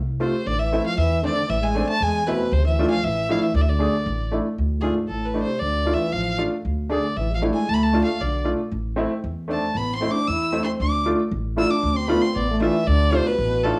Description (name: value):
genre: klezmer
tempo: 116 BPM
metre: 2/4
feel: straight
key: D dorian sharp4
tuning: A4 = 439 Hz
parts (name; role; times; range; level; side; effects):
- upright bass; bass; 0.0-13.7 s; A1 to E2; -27 LUFS; equal; none
- rich violin; melody; 0.2-13.8 s; G#4 to E6; -28 LUFS; equal; cassette tape
- breathy trombone; second line; 0.2-13.8 s; G#2 to E4; -30 LUFS; equal; cassette tape
- clear upright piano; accompaniment; 0.2-13.8 s; A3 to G#4; -26 LUFS; equal; cassette tape
room: moderate booth ambience, RT60 0.3 s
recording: home recording on cassette, studio reverb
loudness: -22 LUFS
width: mono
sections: 0.0-4.6 A section; 4.6-12.9 B section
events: violin solo 4.6-12.9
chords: 0.5 Am; 2.5 Dm; 8.7 Am; 10.8 Dm